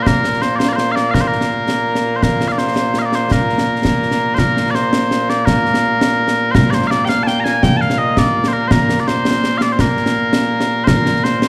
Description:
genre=scottish traditional, Scottish pipe music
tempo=111 BPM (dotted quarters)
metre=6/8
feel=straight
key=Bb major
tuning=A4 = 438 Hz
part: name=mellow small bagpipes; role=melody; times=0.0-11.5 s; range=Bb2 to Bb5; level=-18 LUFS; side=equal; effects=none
part: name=concert snare drum and concert bass drum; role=drums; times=0.1-11.5 s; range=none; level=-19 LUFS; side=equal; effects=none
room=wet recital hall reverb, RT60 1.5 s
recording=recorded in a church or concert hall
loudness=-16 LUFS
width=mono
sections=0.0-4.4 A section; 4.4-11.5 A section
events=none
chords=none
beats=| 0.06 0.60 | 1.14 1.68 | 2.22 2.76 | 3.30 3.84 | 4.38 4.92 | 5.46 6.00 | 6.54 7.09 | 7.63 8.17 | 8.71 9.25 | 9.79 10.33 | 10.87 11.41

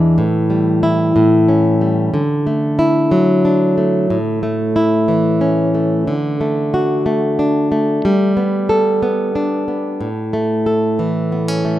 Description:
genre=pop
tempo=61 BPM (dotted quarters)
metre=6/8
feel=straight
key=D major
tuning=A4 = 440 Hz
part: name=flamenco guitar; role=solo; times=0.0-11.8 s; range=E2 to A4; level=-13 LUFS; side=equal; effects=none
room=moderate plate reverb, RT60 3.4 s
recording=rough home demo mix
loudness=-13 LUFS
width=side -13 dB against mid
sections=0.0-11.8 A section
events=none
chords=0.2 A5; 1.2 A7; 2.1 Dadd9; 4.1 A; 6.1 D; 8.0 Gadd9; 10.0 A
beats=| 0.17 1.16 | 2.14 3.12 | 4.11 5.09 | 6.08 7.06 | 8.05 9.03 | 10.01 11.00

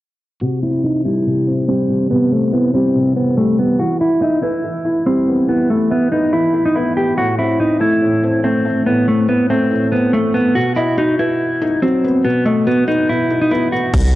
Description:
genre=hip hop, trap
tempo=142 BPM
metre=4/4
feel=half-time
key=unclear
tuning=A4 = 440 Hz
part: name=mellow electric guitar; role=melody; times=0.4-13.9 s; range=A3 to G4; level=-15 LUFS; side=equal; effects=spring reverb, low-pass filter, tape echo
part: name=felt-muted upright piano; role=accompaniment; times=0.4-14.2 s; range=A2 to E5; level=-18 LUFS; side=left 1 dB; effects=low-pass filter
part: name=distorted 808-style bass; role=bass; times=13.9-14.2 s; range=C2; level=-13 LUFS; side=equal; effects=distortion
part: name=trap drum kit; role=drums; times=13.9-14.0 s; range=crash cymbal, kick drum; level=-16 LUFS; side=equal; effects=none
room=digital ambience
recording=dry, gritty hardware recording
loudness=-13 LUFS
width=side -15 dB against mid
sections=0.4-13.9 A section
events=filter sweep 0.4-13.9; hi-hats muted 13.9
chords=0.4 C; 3.8 Em; 7.2 Am; 10.6 B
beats=| 0.42 0.84 1.26 1.68 | 2.11 2.53 2.95 3.37 | 3.80 4.22 4.64 5.06 | 5.49 5.91 6.33 6.75 | 7.18 7.60 8.02 8.44 | 8.87 9.29 9.71 10.13 | 10.56 10.98 11.40 11.82 | 12.25 12.67 13.09 13.51 | 13.94

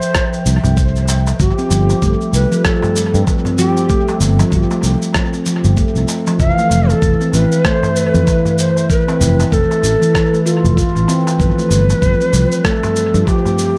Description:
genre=organic downtempo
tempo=96 BPM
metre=4/4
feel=swing 59% on 16ths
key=G mixolydian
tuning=A4 = 440 Hz
part: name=breathy mellow Native American-style cedar flute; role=melody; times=0.0-13.8 s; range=G4 to F5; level=-22 LUFS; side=equal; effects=vintage 12-bit sampler grit, tape echo
part: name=warbly tape-like pad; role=sustained chords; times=0.0-13.8 s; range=F3 to G5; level=-29 LUFS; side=equal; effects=chorus, built-in reverb, sidechain pumping
part: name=electronic shaker and rim click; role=drums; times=0.0-13.7 s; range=none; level=-26 LUFS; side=equal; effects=analog delay
part: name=electronic kick drum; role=drums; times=0.1-13.4 s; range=none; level=-20 LUFS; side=equal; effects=none
part: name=darbuka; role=percussion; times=0.3-13.6 s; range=none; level=-28 LUFS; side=equal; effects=analog delay
part: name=sustaining fretless electric bass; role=bass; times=0.5-13.2 s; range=F1 to G2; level=-17 LUFS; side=equal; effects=sidechain pumping
part: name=handpan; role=arpeggios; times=1.4-13.6 s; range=E3 to F4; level=-19 LUFS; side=equal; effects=tape echo
room=moderate spring reverb, RT60 2.1 s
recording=echo-heavy mix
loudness=-14 LUFS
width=mono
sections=0.0-13.8 A section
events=none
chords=0.0 Fmaj7; 1.4 G9sus4; 6.4 Fmaj7; 11.4 G9sus4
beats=0.15 0.77 | 1.40 2.02 2.65 3.27 | 3.90 4.52 5.15 5.77 | 6.40 7.02 7.65 8.27 | 8.90 9.52 10.15 10.77 | 11.40 12.02 12.65 13.27

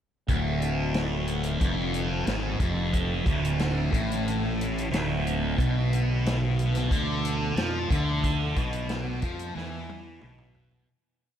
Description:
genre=psychedelic rock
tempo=90 BPM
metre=4/4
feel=straight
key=D dorian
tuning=A4 = 440 Hz
part: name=thick fuzz guitar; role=riff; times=0.3-10.9 s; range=D2 to F3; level=-27 LUFS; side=equal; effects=distortion, phaser
part: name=fuzz fingered electric bass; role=bass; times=0.3-10.8 s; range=D1 to F2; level=-31 LUFS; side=equal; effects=overdrive
part: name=vintage drum kit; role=drums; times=0.3-10.9 s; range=hi-hat, kick drum, snare drum, toms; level=-31 LUFS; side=equal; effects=none
room=moderate huge ambient reverb, RT60 8.0 s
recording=dreamy mix soaked in reverb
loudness=-24 LUFS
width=side -10 dB against mid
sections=0.3-10.9 riff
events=fade-out 8.2-10.9; drum fill 9.6-10.9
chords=0.3 Dm; 5.6 Bdim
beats=| 0.28 0.94 1.61 2.27 | 2.93 3.59 4.26 4.92 | 5.58 6.25 6.91 7.57 | 8.24 8.90 9.56 10.22

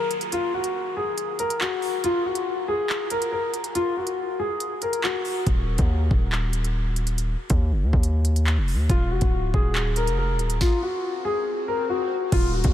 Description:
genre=hip hop, drill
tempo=140 BPM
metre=4/4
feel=half-time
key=Eb harmonic minor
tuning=A4 = 439 Hz
part: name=warm concert grand piano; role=melody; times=0.0-5.4, 8.9-12.7 s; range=F4 to Bb4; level=-25 LUFS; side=left 2 dB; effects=wide subtle chorus, low-pass filter, analog delay
part: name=downlifter and swell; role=sound effects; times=0.0-2.0, 11.1-12.7 s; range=none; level=-38 LUFS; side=left 2 dB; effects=none
part: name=drill drum kit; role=drums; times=0.1-12.7 s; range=handclaps, hi-hat, kick drum, snare drum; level=-26 LUFS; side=equal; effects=none
part: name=distorted 808-style bass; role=bass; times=5.5-12.7 s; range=D1 to Eb2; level=-22 LUFS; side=equal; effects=distortion
part: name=glassy FM pad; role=sustained chords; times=12.5-12.7 s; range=Eb3 to F5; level=-45 LUFS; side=equal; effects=ensemble chorus, built-in reverb
room=light reverb, digital ambience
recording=none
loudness=-21 LUFS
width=side -12 dB against mid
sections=0.0-12.3 A section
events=break 0.0-5.5; stop 10.6-12.3; swell 11.1-12.3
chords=none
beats=| 0.32 0.75 1.18 1.61 | 2.04 2.47 2.90 3.32 | 3.75 4.18 4.61 5.04 | 5.47 5.89 6.32 6.75 | 7.18 7.61 8.04 8.47 | 8.89 9.32 9.75 10.18 | 10.61 11.04 11.47 11.89 | 12.32

